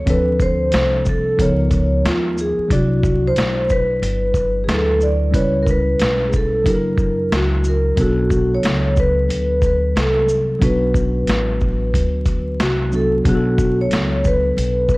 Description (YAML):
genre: hip hop, jazz-hop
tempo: 91 BPM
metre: 4/4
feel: swing 61% on 16ths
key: B minor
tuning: A4 = 440 Hz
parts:
  - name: vibraphone with medium mallets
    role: melody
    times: 0.0-15.0 s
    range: E#4 to D5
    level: -20 LUFS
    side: equal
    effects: none
  - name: mellow tine electric piano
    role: accompaniment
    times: 0.0-15.0 s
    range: E3 to D5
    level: -22 LUFS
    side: equal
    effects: medium stereo tremolo
  - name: upright bass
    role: bass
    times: 0.0-15.0 s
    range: F#1 to D#2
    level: -20 LUFS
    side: equal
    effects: transformer saturation
  - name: boom bap sampler-style drum kit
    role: drums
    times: 0.1-15.0 s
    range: hi-hat, kick drum, shaker, snare drum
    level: -20 LUFS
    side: equal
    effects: none
room: light reverb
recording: worn, warbling old tape, cassette tape, vinyl crackle, warbly pitch drift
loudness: -15 LUFS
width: side -22 dB against mid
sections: 0.0-13.3 A section; 13.3-15.0 A section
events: none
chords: 0.1 Dm7; 1.4 C#13; 2.7 Cmaj9#11; 5.3 C#m7b5; 6.7 F#7b13; 8.0 Bm7